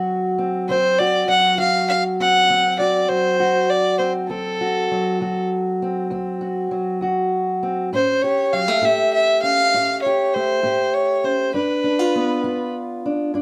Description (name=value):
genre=acoustic country blues, solo or duo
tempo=66 BPM (dotted quarters)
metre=12/8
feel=straight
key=D mixolydian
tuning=A4 = 440 Hz
part: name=fingerpicked steel-string acoustic guitar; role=accompaniment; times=0.0-13.4 s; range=D2 to G4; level=-24 LUFS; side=equal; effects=none
part: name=dark fiddle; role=melody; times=0.7-12.7 s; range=A4 to F#5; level=-20 LUFS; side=equal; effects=none
room=moderate studio reverb, RT60 0.8 s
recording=none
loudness=-20 LUFS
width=mono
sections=0.0-13.4 A section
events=none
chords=0.0 D7; 7.9 A7; 11.5 G7